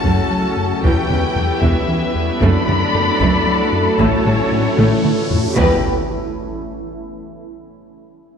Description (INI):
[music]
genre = cinematic, hybrid orchestral and electronic film score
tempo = 76 BPM (dotted quarters)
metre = 6/8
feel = straight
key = E dorian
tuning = A4 = 442 Hz
[part]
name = rich symphonic violin section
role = melody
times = 0.0-5.9 s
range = E5 to B5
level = -22 LUFS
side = left 4 dB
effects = low-pass filter
[part]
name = rich symphonic violin section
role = second line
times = 0.0-5.9 s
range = F#4 to D5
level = -25 LUFS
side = left 2 dB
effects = none
[part]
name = rich symphonic viola section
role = accompaniment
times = 0.0-5.9 s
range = D3 to E4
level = -24 LUFS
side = equal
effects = low-pass filter
[part]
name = granular cloud pad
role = sustained chords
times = 0.0-5.9 s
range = F#3 to B4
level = -24 LUFS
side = right 1 dB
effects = built-in reverb, low-pass filter
[part]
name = mellow French horn section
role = sustained chords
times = 0.0-5.8 s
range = B3 to B4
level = -25 LUFS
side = left 3 dB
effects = low-pass filter
[part]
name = mellow trombone section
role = sustained chords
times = 0.0-5.8 s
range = C#3 to B3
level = -27 LUFS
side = right 3 dB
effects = none
[part]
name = round analog bass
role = riff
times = 0.0-5.5 s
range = E2 to A3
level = -21 LUFS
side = left 2 dB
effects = low-pass filter
[part]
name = taiko ensemble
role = drums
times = 0.0-6.6 s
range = none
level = -23 LUFS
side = equal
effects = none
[part]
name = impact and riser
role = sound effects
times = 0.0-7.2 s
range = none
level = -28 LUFS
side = right 1 dB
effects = none
[part]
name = rich symphonic cello section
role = bass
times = 0.1-5.9 s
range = E2 to A2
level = -23 LUFS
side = right 3 dB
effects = none
[part]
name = warm symphonic double bass section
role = bass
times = 0.1-5.9 s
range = E1 to A1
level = -24 LUFS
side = right 4 dB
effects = none
[sound]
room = moderate scoring stage reverb, RT60 1.6 s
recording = none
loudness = -14 LUFS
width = side -7 dB against mid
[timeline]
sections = 0.0-5.6 A section; 5.6-7.2 B section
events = impact 0.0-0.8, 5.6-7.2; filter sweep 0.0-5.6; riser 4.1-5.6; drum fill 4.8-5.6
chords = 0.0 F#m; 0.8 Em; 2.4 D/F#; 4.0 A; 5.6 Em